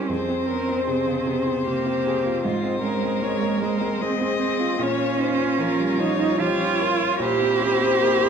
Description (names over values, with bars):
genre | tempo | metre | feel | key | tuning
classical, slow romantic movement for piano quartet | 76 BPM | 3/4 | rubato | F minor | A4 = 440 Hz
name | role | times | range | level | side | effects
rich violin | melody | 0.0-8.3 s | Bb4 to Eb5 | -27 LUFS | left 10 dB | none
rich cello | second line | 0.0-8.3 s | Ab3 to G4 | -23 LUFS | right 5 dB | none
clear concert grand piano | accompaniment | 0.0-8.3 s | F2 to C5 | -26 LUFS | equal | none
clear viola | accompaniment | 0.0-8.3 s | E4 to Bb4 | -30 LUFS | right 1 dB | none
room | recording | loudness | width
wet recital hall reverb, RT60 1.5 s | none | -20 LUFS | side -7 dB against mid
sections
0.0-8.3 A section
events
none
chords
0.1 Fm; 2.4 Fm/Ab; 4.8 Bbm; 7.2 C7/Bb